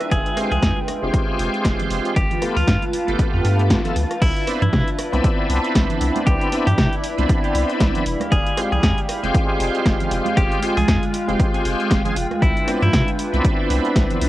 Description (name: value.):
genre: deep house.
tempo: 117 BPM.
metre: 4/4.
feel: swing 57% on 16ths.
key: C major.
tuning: A4 = 441 Hz.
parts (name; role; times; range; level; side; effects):
warm analog pad; sustained chords; 0.0-14.3 s; Ab3 to A5; -29 LUFS; equal; lush chorus, sidechain pumping.
punchy analog drum machine; drums; 0.0-14.3 s; crash cymbal, hi-hat, rim click, snare drum; -26 LUFS; equal; overdrive, cassette tape.
granular cloud pad; texture; 0.0-14.3 s; Ab3 to B5; -27 LUFS; equal; built-in reverb, sidechain pumping.
clean electric guitar; melody; 0.1-13.1 s; E4 to Ab4; -27 LUFS; equal; vintage 12-bit sampler grit, cassette tape, tape echo.
round analog bass; bass; 0.1-14.3 s; F1 to C3; -21 LUFS; equal; none.
electronic kick drum; drums; 0.1-14.1 s; none; -20 LUFS; equal; overdrive, cassette tape.
bright tonewheel organ; stabs; 0.4-14.3 s; Ab3 to A4; -24 LUFS; equal; overdrive, chorus vibrato, slow rotary speaker, sidechain pumping, analog delay.
congas; percussion; 0.5-14.2 s; none; -32 LUFS; right 8 dB; none.
room: light reverb.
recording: home recording on cassette.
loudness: -17 LUFS.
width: side -15 dB against mid.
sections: 0.0-4.2 A section; 4.2-14.3 B section.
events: band accent 3.7; drop 4.2-14.3.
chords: 0.0 Fmadd9; 2.2 G9; 4.2 Cmaj9; 8.1 Fmadd9; 12.4 Cmaj9.